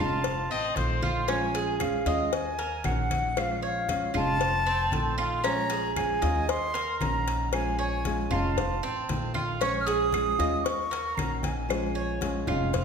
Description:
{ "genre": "latin, Cuban son and guajira", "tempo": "115 BPM", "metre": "4/4", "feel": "straight", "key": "Bb minor", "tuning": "A4 = 440 Hz", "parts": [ { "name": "concert flute", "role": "melody", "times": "0.0-12.4 s", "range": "F5 to F6", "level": "-30 LUFS", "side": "equal", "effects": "none" }, { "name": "nylon-string guitar", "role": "accompaniment", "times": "0.0-12.8 s", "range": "Eb3 to Gb4", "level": "-33 LUFS", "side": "left 1 dB", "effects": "none" }, { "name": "Cuban tres", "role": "arpeggios", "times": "0.0-12.8 s", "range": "C4 to Eb5", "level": "-31 LUFS", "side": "right 4 dB", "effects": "none" }, { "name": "upright bass", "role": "bass", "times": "0.0-12.8 s", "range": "F1 to Eb2", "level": "-32 LUFS", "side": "equal", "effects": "none" }, { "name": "claves", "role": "percussion", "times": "0.0-12.7 s", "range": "none", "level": "-42 LUFS", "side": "right 5 dB", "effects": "none" }, { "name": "congas", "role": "percussion", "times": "0.2-12.8 s", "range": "none", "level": "-36 LUFS", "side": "left 1 dB", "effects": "none" }, { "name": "cowbell", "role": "percussion", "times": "0.2-12.8 s", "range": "none", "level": "-34 LUFS", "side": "left 6 dB", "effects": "none" }, { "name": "warm trumpet", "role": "second line", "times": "0.5-1.3 s", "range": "C5 to Eb5", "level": "-32 LUFS", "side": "left 4 dB", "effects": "none" } ], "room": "wet recital hall reverb, RT60 1.4 s", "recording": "recorded in a church or concert hall", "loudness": "-25 LUFS", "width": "side -6 dB against mid", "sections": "0.0-1.3 A section; 1.3-12.8 A section", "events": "none", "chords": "0.2 F7; 1.3 Bbm7; 2.3 Ebm7; 3.4 Bbm7; 4.4 F7; 5.4 Bbm7; 6.5 Ebm7; 7.5 Bbm7; 8.6 F7; 9.6 Bbm7; 10.7 Ebm7; 11.7 Bbm7", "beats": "0.24 0.76 | 1.28 1.80 2.33 2.85 | 3.37 3.89 4.41 4.93 | 5.45 5.97 6.49 7.01 | 7.53 8.05 8.57 9.10 | 9.62 10.14 10.66 11.18 | 11.70 12.22 12.74" }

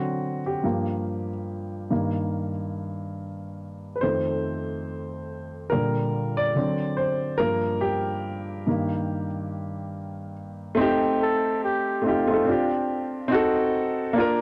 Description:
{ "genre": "lo-fi hip hop", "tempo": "71 BPM", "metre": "4/4", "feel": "swing 60% on 16ths", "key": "G minor", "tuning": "A4 = 440 Hz", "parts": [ { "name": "warm upright piano", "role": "accompaniment", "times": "0.0-14.4 s", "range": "F2 to D5", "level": "-26 LUFS", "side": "equal", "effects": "cassette tape, low-pass filter" }, { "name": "breathy flugelhorn", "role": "melody", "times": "11.2-12.7 s", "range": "F4 to A4", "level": "-29 LUFS", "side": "equal", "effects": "low-pass filter" } ], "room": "light reverb, small room reverb", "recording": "dry, gritty hardware recording, cassette tape", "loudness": "-26 LUFS", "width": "mono", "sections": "0.0-10.8 A section; 10.8-14.4 B section", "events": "upright piano solo 0.0-10.8", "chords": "0.0 D7; 0.6 Gm7; 1.9 Gm; 4.0 F7; 5.7 Bb6; 6.6 D7; 7.4 Gm7; 8.7 Gm; 10.8 Am7b5; 12.5 Csus24; 13.3 Cdim7", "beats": "| 0.64 1.48 2.33 3.17 | 4.02 4.86 5.71 6.55 | 7.40 8.24 9.09 9.93 | 10.78 11.62 12.47 13.31 | 14.16" }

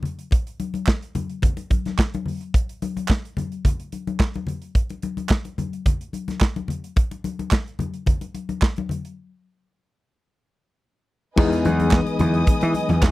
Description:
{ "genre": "disco", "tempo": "108 BPM", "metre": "4/4", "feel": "straight", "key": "E major", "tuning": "A4 = 440 Hz", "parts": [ { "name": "congas", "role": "percussion", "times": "0.0-13.1 s", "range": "none", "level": "-28 LUFS", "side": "left 4 dB", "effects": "none" }, { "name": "modern studio drum kit", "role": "drums", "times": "0.1-13.1 s", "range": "crash cymbal, hi-hat, kick drum, snare drum", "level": "-19 LUFS", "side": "equal", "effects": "none" }, { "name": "group handclap", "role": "percussion", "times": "0.9-13.1 s", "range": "none", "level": "-28 LUFS", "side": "right 8 dB", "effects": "none" }, { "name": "overdriven reed electric piano", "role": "accompaniment", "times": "11.4-13.1 s", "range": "E3 to G#4", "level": "-23 LUFS", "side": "left 4 dB", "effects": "fast tremolo" }, { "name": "dark studio string section", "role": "sustained chords", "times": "11.4-13.1 s", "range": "B4 to D#6", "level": "-28 LUFS", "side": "equal", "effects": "none" }, { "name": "gritty slap bass", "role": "bass", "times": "11.4-13.1 s", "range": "E2 to E3", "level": "-20 LUFS", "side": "right 1 dB", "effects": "overdrive" } ], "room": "little or no reverb", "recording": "dry, close 1970s-style studio recording", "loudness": "-21 LUFS", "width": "side -17 dB against mid", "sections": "0.0-11.4 A section; 11.4-13.1 B section", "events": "break 9.2-11.4", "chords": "0.0 N.C.; 11.4 Emaj7", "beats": "| 0.32 0.88 1.43 1.98 | 2.54 3.09 3.65 4.20 | 4.75 5.30 5.86 6.41 | 6.96 7.52 8.07 8.62 | 9.17 9.72 10.28 10.83 | 11.38 11.93 12.48 13.03" }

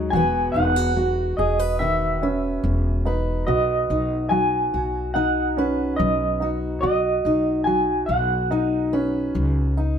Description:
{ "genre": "acoustic folk duo or small band", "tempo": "72 BPM", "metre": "4/4", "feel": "straight", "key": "B major", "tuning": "A4 = 441 Hz", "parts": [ { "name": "fingerpicked steel-string acoustic guitar", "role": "accompaniment", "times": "0.0-10.0 s", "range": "B2 to B4", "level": "-26 LUFS", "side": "left 3 dB", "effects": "none" }, { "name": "warm upright piano", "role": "arpeggios", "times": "0.0-10.0 s", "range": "D#3 to F#4", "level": "-27 LUFS", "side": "right 3 dB", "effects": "none" }, { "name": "upright bass", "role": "bass", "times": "0.0-10.0 s", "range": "E1 to C#2", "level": "-25 LUFS", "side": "equal", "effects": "none" }, { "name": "electric guitar through a small old amp", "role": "melody", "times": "0.1-9.7 s", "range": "D#5 to G#5", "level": "-23 LUFS", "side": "right 1 dB", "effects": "tremolo" } ], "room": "light reverb", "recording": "minimal, uncompressed stereo recording", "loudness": "-19 LUFS", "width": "side -8 dB against mid", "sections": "0.0-10.0 A section", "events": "none", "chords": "0.1 Esus2; 3.5 B", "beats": "| 0.13 0.97 1.81 2.64 | 3.48 4.32 5.15 5.99 | 6.83 7.67 8.51 9.35" }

